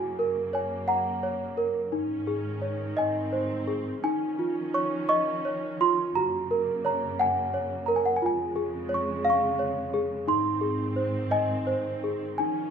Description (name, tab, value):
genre	children's music, lullaby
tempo	58 BPM (dotted quarters)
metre	6/8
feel	rubato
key	Db major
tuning	A4 = 440 Hz
part	small celesta	melody	0.0-12.7 s	Eb4 to Db6	-26 LUFS	right 1 dB	none
part	muted studio string section	sustained chords	0.0-12.7 s	F2 to Db4	-33 LUFS	right 2 dB	none
room	wet recital hall reverb, RT60 1.7 s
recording	minimal, uncompressed stereo recording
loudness	-25 LUFS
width	side -7 dB against mid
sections	0.0-4.0 A section; 4.0-12.7 B section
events	none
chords	0.0 Gb; 1.9 Absus4; 3.0 Ab; 4.0 Dbadd9; 6.2 Gb; 8.2 Db/F; 10.3 Ab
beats	0.89 | 1.92 2.97 | 4.03 5.10 | 6.16 7.19 | 8.22 9.26 | 10.28 11.33 | 12.39